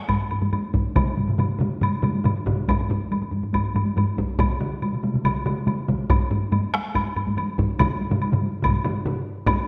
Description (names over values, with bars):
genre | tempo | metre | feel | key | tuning
japanese traditional, taiko drum ensemble | 141 BPM | 4/4 | straight | none | none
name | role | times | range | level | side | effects
taiko ensemble | percussion | 0.1-9.6 s | none | -30 LUFS | equal | none
taiko ensemble | percussion | 0.1-9.6 s | none | -27 LUFS | equal | none
taiko ensemble | percussion | 0.1-9.6 s | none | -28 LUFS | equal | none
woodblock | percussion | 0.1-9.6 s | none | -32 LUFS | equal | none
taiko ensemble | percussion | 1.0-9.2 s | none | -28 LUFS | equal | none
room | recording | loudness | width
wet recital hall reverb, RT60 1.3 s | none | -23 LUFS | mono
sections
0.0-9.5 A section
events
speeding up 0.0-9.7; stop 9.1-9.5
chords
none